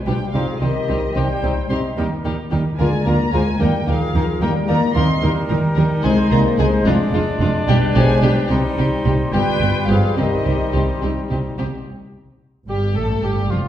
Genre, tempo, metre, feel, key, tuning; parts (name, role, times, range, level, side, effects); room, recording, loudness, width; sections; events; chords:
quick classical-period movement for symphony orchestra; 73 BPM (dotted quarters); 6/8; straight; C minor; A4 = 445 Hz
muted chamber violin section; melody; 0.1-13.6 s; F4 to Bb4; -31 LUFS; left 5 dB
bright clarinet; second line; 0.1-11.6 s; D4 to F4; -29 LUFS; left 1 dB
mellow cor anglais; second line; 0.1-13.7 s; F4 to D5; -30 LUFS; right 2 dB
mellow hollow flute section; second line; 0.1-11.0 s; G4 to Eb5; -28 LUFS; left 2 dB
muted studio violin section; second line; 0.1-13.7 s; F4 to C6; -27 LUFS; left 1 dB
clear bassoon; accompaniment; 0.1-11.6 s; G3 to Bb3; -28 LUFS; left 1 dB
muted chamber viola section; accompaniment; 0.1-13.6 s; F3 to F4; -27 LUFS; right 1 dB
mellow French horn section; sustained chords; 0.1-13.7 s; Eb3 to C4; -23 LUFS; left 2 dB
muted chamber cello section; bass; 0.1-13.7 s; F2 to Eb3; -22 LUFS; right 2 dB
muted chamber double bass section; bass; 0.1-13.7 s; F1 to Eb2; -21 LUFS; right 1 dB
wet recital hall reverb, RT60 1.4 s; heard from further back in the room; -16 LUFS; side -11 dB against mid
0.0-11.9 A section; 11.9-13.7 B section
0.3 Cm; 2.0 Eb; 2.8 Bb/D; 3.6 Eb5; 5.2 Eb; 6.0 Ab/C; 6.9 Ddim; 7.7 G; 8.5 Cm; 9.3 G7; 10.2 Cm; 11.9 Gsus2